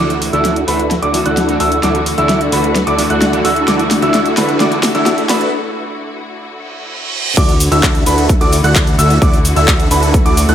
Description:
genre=EDM, festival progressive house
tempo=130 BPM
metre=4/4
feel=straight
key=D major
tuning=A4 = 440 Hz
part: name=electric guitar at the edge of break-up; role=accompaniment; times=0.0-5.4 s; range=E3 to F#4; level=-21 LUFS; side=right 2 dB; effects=ensemble chorus, sidechain pumping, dub echo
part: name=clear studio string section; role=sustained chords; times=0.0-10.5 s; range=D3 to F#4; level=-21 LUFS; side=left 2 dB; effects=sidechain pumping
part: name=clear grand piano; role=arpeggios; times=0.0-10.5 s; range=B5 to F#6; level=-19 LUFS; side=right 1 dB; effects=sidechain pumping, low-pass filter, dub echo
part: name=big supersaw lead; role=riff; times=0.0-10.5 s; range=D4 to F#5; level=-17 LUFS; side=equal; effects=phaser, cassette tape, sidechain pumping, low-pass filter, dub echo
part: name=fat analog bass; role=bass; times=0.0-10.5 s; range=D2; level=-18 LUFS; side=equal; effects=sidechain pumping
part: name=riser and reverse cymbal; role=sound effects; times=0.0-7.4 s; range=none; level=-25 LUFS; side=right 2 dB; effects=none
part: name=big-room dance drum kit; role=drums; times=0.1-10.5 s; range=cabasa, crash cymbal, handclaps, hi-hat, snare drum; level=-18 LUFS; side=equal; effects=overdrive
part: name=electronic kick drum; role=drums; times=7.4-10.2 s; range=none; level=-13 LUFS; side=equal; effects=overdrive
room=moderate concert hall reverb, RT60 2.1 s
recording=high-pass filter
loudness=-11 LUFS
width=side -9 dB against mid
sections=0.0-7.4 A section; 7.4-10.5 B section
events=build-up 0.0-7.4; drum fill 0.0-5.5; filter sweep on supersaw synth 0.0-7.4; filter sweep 0.0-7.4; break 5.5-7.4; reverse cymbal 6.7-7.4; drop 7.4-10.5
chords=0.0 Dadd9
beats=0.45 0.91 1.37 | 1.83 2.29 2.75 3.22 | 3.68 4.14 4.60 5.06 | 5.53 5.99 6.45 6.91 | 7.37 7.83 8.29 8.76 | 9.22 9.68 10.14

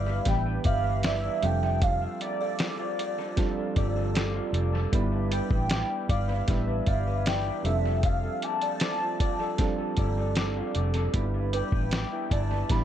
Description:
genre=indie pop, bedroom pop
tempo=77 BPM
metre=4/4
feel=straight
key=unclear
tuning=A4 = 440 Hz
part: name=warm velvety synth lead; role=melody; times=0.0-12.8 s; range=D5 to B5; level=-32 LUFS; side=equal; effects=lush chorus, analog delay
part: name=buzzing kalimba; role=second line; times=0.0-12.5 s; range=B4 to F5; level=-37 LUFS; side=right 3 dB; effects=ensemble chorus, analog delay
part: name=electric guitar through a small old amp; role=accompaniment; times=0.0-12.8 s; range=F3 to D5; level=-36 LUFS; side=left 3 dB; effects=analog chorus, warbly pitch drift, analog delay
part: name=soft electric-piano-like synth keys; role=accompaniment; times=0.0-12.8 s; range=E3 to B4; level=-33 LUFS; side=right 4 dB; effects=chorus, cassette tape, analog delay
part: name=vintage muted fingered electric bass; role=bass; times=0.0-12.8 s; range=F1 to A1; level=-28 LUFS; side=equal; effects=none
part: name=lo-fi sampler-style drum kit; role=drums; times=0.3-12.8 s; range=hi-hat, kick drum, snare drum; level=-29 LUFS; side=equal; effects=analog delay
room=light reverb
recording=echo-heavy mix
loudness=-25 LUFS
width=side -10 dB against mid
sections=0.0-12.8 A section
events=none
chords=0.0 G6; 1.4 F69; 4.9 G6; 7.7 F69; 11.1 G6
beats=0.26 1.04 | 1.82 2.60 3.38 4.15 | 4.93 5.71 6.49 7.26 | 8.04 8.82 9.59 10.37 | 11.15 11.92 12.70

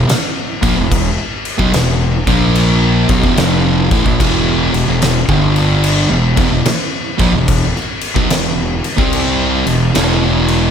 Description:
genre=stoner and doom metal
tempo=73 BPM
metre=4/4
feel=swing 65% on 8ths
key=E minor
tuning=A4 = 444 Hz
part: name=thick fuzz guitar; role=riff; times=0.0-10.7 s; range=E2 to C4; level=-14 LUFS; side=equal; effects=distortion
part: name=fuzz fingered electric bass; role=bass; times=0.0-10.7 s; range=E1 to C2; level=-18 LUFS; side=equal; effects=overdrive
part: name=oversized low-tuned drum kit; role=drums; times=0.1-10.6 s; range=crash cymbal, kick drum, snare drum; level=-16 LUFS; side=equal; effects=none
room=little or no reverb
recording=none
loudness=-11 LUFS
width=side -8 dB against mid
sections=0.0-10.7 A section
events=none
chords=0.0 E5; 2.2 A#5; 3.0 E5; 5.2 G5; 6.1 Em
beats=0.10 | 0.92 1.74 2.56 3.38 | 4.21 5.03 5.85 6.67 | 7.49 8.31 9.13 9.95

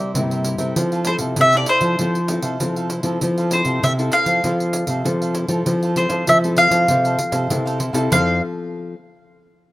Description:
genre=samba and choro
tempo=98 BPM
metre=4/4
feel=straight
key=F major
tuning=A4 = 436 Hz
part: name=mandolin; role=melody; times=0.0-8.4 s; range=C5 to F5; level=-17 LUFS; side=equal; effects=none
part: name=cavaquinho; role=accompaniment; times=0.0-8.4 s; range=E4 to F5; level=-31 LUFS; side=right 4 dB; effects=none
part: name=nylon-string guitar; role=accompaniment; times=0.0-8.9 s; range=G2 to A4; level=-26 LUFS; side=left 4 dB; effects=none
part: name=nylon-string guitar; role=bass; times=0.0-8.4 s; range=F2 to G3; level=-21 LUFS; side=equal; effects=none
part: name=pandeiro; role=percussion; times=0.1-8.3 s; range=none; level=-26 LUFS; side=right 1 dB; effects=none
room=small room ambience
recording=rough home demo mix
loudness=-16 LUFS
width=side -17 dB against mid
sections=0.0-5.7 A section; 5.7-8.1 B section; 8.1-9.7 C section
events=none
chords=0.0 C7; 0.8 Fmaj7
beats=0.15 | 0.76 1.38 1.99 2.60 | 3.21 3.83 4.44 5.05 | 5.67 6.28 6.89 7.51 | 8.12 8.73

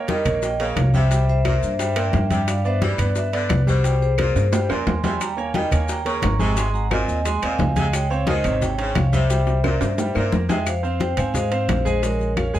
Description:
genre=latin, salsa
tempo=176 BPM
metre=4/4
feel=straight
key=unclear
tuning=A4 = 440 Hz
part: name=vibraphone with medium hard mallets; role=melody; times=0.0-12.6 s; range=G4 to Db6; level=-25 LUFS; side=equal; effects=plate reverb
part: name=clear concert grand piano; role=accompaniment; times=0.0-12.6 s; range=C3 to Ab5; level=-27 LUFS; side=right 3 dB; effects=none
part: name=clear saxophone section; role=second line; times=0.1-10.6 s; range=Bb2 to E3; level=-30 LUFS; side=left 2 dB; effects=none
part: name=bongos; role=percussion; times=0.1-12.6 s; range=none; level=-31 LUFS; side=left 5 dB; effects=none
part: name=congas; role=percussion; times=0.1-12.5 s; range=none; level=-27 LUFS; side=left 2 dB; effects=none
part: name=maracas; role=percussion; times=0.1-12.6 s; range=none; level=-38 LUFS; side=left 5 dB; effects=none
part: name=timbales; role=percussion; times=0.1-12.5 s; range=none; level=-29 LUFS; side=right 5 dB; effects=none
part: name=upright bass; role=bass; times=0.3-12.6 s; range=Ab1 to Ab2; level=-22 LUFS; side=equal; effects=none
part: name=claves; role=percussion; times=0.3-12.5 s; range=none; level=-35 LUFS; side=left 8 dB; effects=none
room=moderate studio reverb, RT60 0.6 s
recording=none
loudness=-18 LUFS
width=side -12 dB against mid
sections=0.0-10.7 A section; 10.7-12.6 B section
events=drum fill 4.4-5.2, 9.3-10.7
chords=0.0 Eb7; 1.1 C7; 2.5 G; 3.8 C5; 5.2 Eb7; 6.6 Ab; 7.9 Db5; 9.3 C7; 10.7 Fm; 12.0 Bbm7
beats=0.08 0.42 0.77 | 1.11 1.45 1.79 2.13 | 2.48 2.82 3.16 3.50 | 3.84 4.18 4.53 4.87 | 5.21 5.55 5.89 6.23 | 6.57 6.91 7.25 7.59 | 7.94 8.28 8.62 8.96 | 9.30 9.64 9.98 10.32 | 10.67 11.01 11.35 11.69 | 12.03 12.37

